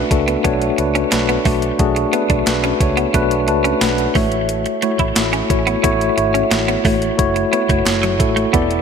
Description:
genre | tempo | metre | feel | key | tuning
1980s-style pop | 89 BPM | 4/4 | straight | unclear | A4 = 439 Hz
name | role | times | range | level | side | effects
mellow tine electric piano | accompaniment | 0.0-8.8 s | A3 to A5 | -17 LUFS | left 2 dB | medium stereo tremolo
clean electric guitar | riff | 0.0-8.6 s | F#3 to E4 | -22 LUFS | right 4 dB | wide subtle chorus, ping-pong delay
vintage muted fingered electric bass | bass | 0.1-8.8 s | E1 to C#2 | -24 LUFS | equal | none
clean 12-bit digital drum machine | drums | 0.1-8.8 s | hi-hat, kick drum, snare drum, tambourine | -19 LUFS | equal | overdrive, gated reverb
group handclap | percussion | 1.1-8.0 s | none | barely audible | none | none
room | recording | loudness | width
moderate lush hall reverb, RT60 2.6 s | bright 1980s-style digital production | -14 LUFS | side -6 dB against mid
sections
0.0-8.8 A section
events
tine electric piano fill 3.1-4.5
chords
0.0 Bm7; 4.2 A6; 7.2 F#m7

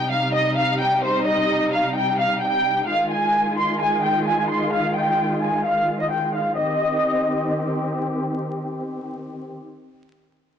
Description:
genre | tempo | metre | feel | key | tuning
hip hop | 130 BPM | 4/4 | half-time | C minor | A4 = 440 Hz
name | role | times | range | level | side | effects
warm studio violin section | melody | 0.0-7.9 s | C5 to C6 | -20 LUFS | equal | low-pass filter
clear symphonic string section | sustained chords | 0.0-9.6 s | C3 to G4 | -24 LUFS | equal | low-pass filter
room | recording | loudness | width
light reverb, small room ambience | blown-out, overdriven recording, vinyl crackle, overdrive, nothing above 10.4 kHz | -19 LUFS | side -8 dB against mid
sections
0.0-6.6 A section; 6.6-10.3 B section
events
filter sweep 0.0-6.6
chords
0.0 Cm; 2.9 Fm7; 6.6 Cm

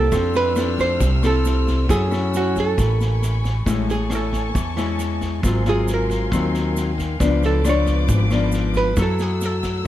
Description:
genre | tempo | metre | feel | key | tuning
bossa nova | 136 BPM | 4/4 | straight | unclear | A4 = 440 Hz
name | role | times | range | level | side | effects
archtop guitar, miked and amplified | melody | 0.0-9.9 s | F#4 to C#5 | -23 LUFS | right 4 dB | none
warm trombone | second line | 0.0-3.4 s | Bb3 to D4 | -30 LUFS | left 4 dB | none
nylon-string guitar | accompaniment | 0.0-9.9 s | G#2 to A4 | -22 LUFS | left 3 dB | none
rich studio string section | sustained chords | 0.0-9.9 s | A3 to F6 | -31 LUFS | left 1 dB | none
upright bass | bass | 0.0-9.8 s | G#1 to F#2 | -21 LUFS | equal | none
vintage drum kit | drums | 0.1-9.7 s | kick drum, rim click, snare drum | -28 LUFS | equal | none
egg shaker | percussion | 0.1-9.9 s | none | -40 LUFS | right 7 dB | none
room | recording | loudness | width
light reverb | dark, warm production | -17 LUFS | side -13 dB against mid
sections
0.0-3.7 A section; 3.7-9.9 B section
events
hollow-body jazz guitar solo 3.7-9.9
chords
0.1 Fmaj7; 1.9 F#m7; 2.8 Amaj9; 3.7 Amaj7; 5.4 G#13; 7.2 C#7b9; 9.0 F#m7

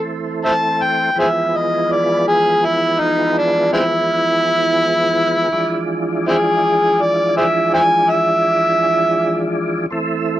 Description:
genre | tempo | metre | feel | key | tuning
blues | 55 BPM (dotted quarters) | 12/8 | straight | unclear | A4 = 439 Hz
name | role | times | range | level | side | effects
overdriven harmonica | melody | 0.0-9.5 s | G#3 to A5 | -15 LUFS | equal | none
tonewheel organ | sustained chords | 0.0-10.4 s | E3 to E4 | -20 LUFS | right 1 dB | chorus vibrato, slow rotary speaker
room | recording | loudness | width
moderate studio reverb, RT60 0.6 s | none | -14 LUFS | side -13 dB against mid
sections
0.0-10.4 A section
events
harmonica solo 0.0-10.4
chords
0.0 Am; 1.1 E7b9

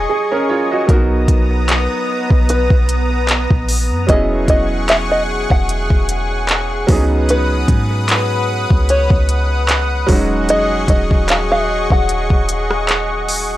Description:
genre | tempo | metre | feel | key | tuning
contemporary R&B | 75 BPM | 4/4 | swing 54% on 16ths | unclear | A4 = 440 Hz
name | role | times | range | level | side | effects
bright grand piano | accompaniment | 0.0-13.6 s | Gb3 to Eb5 | -21 LUFS | right 3 dB | none
lush unison pad | sustained chords | 0.0-13.6 s | B3 to D#6 | -20 LUFS | left 1 dB | chorus, sidechain pumping
clean 808-style bass | bass | 0.0-13.6 s | Eb1 to Ab2 | -18 LUFS | equal | none
open-back banjo | melody | 0.9-13.3 s | A#4 to F#5 | -20 LUFS | equal | tape echo
smooth R&B drum kit | drums | 0.9-13.5 s | handclaps, hi-hat, kick drum, rim click | -15 LUFS | equal | none
room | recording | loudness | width
little or no reverb | dry, gritty hardware recording | -13 LUFS | side -15 dB against mid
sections
0.9-13.6 A section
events
break 0.1-0.9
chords
0.0 Ebm11; 0.9 Bmaj7; 4.1 E69; 6.9 Db9sus4; 10.1 Ebm11

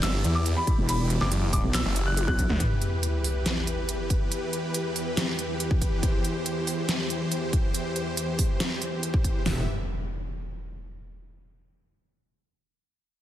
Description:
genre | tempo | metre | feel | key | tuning
heavy wobble dubstep | 140 BPM | 4/4 | half-time | E minor | A4 = 440 Hz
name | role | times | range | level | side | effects
warm grand piano | melody | 0.0-2.5 s | B5 to F#6 | -33 LUFS | equal | dub echo
supersaw chords | sustained chords | 0.0-9.7 s | E2 to E5 | -30 LUFS | left 1 dB | vintage 12-bit sampler grit, sidechain pumping
snarling distorted saw bass | bass | 0.0-2.6 s | F#1 to E2 | -26 LUFS | equal | distortion, overdrive
dubstep drum kit | drums | 0.0-9.3 s | handclaps, hi-hat, ride cymbal, snare drum, toms | -30 LUFS | equal | none
dubstep drum kit | drums | 0.7-9.6 s | hi-hat, kick drum, snare drum, toms | -26 LUFS | equal | none
wobble bass | bass | 0.8-2.5, 9.5-9.7 s | E1 to B1 | -25 LUFS | equal | chorus, overdrive
sub drop and impact | sound effects | 2.6-4.3, 9.5-11.2 s | none | -31 LUFS | equal | none
room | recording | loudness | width
light reverb | dense, heavily limited modern master, lossy compression artefacts | -24 LUFS | side -12 dB against mid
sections
0.0-2.6 A section; 2.6-9.5 B section; 9.5-11.2 C section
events
drop 0.0-2.6; drum fill 2.2-2.6; impact 2.6-4.3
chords
0.0 Em; 6.0 C/E; 9.5 Em

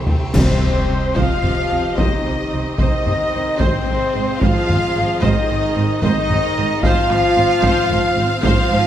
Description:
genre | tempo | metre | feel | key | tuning
cinematic, epic orchestral film score | 74 BPM (dotted quarters) | 6/8 | straight | unclear | A4 = 440 Hz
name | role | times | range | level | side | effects
warm symphonic violin section | melody | 0.0-8.9 s | C5 to G5 | -29 LUFS | left 3 dB | none
warm symphonic viola section | accompaniment | 0.0-8.9 s | G4 to F5 | -29 LUFS | right 1 dB | none
warm symphonic string section | sustained chords | 0.0-8.9 s | C4 to G5 | -28 LUFS | equal | none
warm symphonic double bass section | bass | 0.0-8.8 s | Ab1 to C2 | -25 LUFS | right 3 dB | none
taiko ensemble | drums | 0.1-8.9 s | none | -21 LUFS | equal | none
silver concert flute | second line | 0.3-8.9 s | C5 to F5 | -27 LUFS | right 1 dB | none
warm symphonic violin section | second line | 0.3-8.9 s | C5 to F5 | -30 LUFS | left 2 dB | none
mellow French horn section | sustained chords | 0.3-8.9 s | C4 to F4 | -22 LUFS | left 4 dB | none
warm trombone section | sustained chords | 0.3-8.9 s | C3 to F3 | -27 LUFS | right 4 dB | none
dark trumpet section | stabs | 0.3-8.9 s | C5 to F5 | -25 LUFS | right 1 dB | none
rich studio cello section | bass | 0.3-8.8 s | Ab2 to C3 | -24 LUFS | right 3 dB | none
clash cymbals and concert bass drum | percussion | 0.3-1.4 s | none | -23 LUFS | equal | none
timpani | percussion | 0.3-1.1 s | C3 | -24 LUFS | left 2 dB | none
room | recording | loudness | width
wet recital hall reverb, RT60 1.5 s | none | -15 LUFS | side -10 dB against mid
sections
0.3-8.9 A section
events
drum fill 0.0-0.3; band accent 0.3-0.9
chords
0.3 Cm; 3.6 Ab; 6.8 Fm/Ab

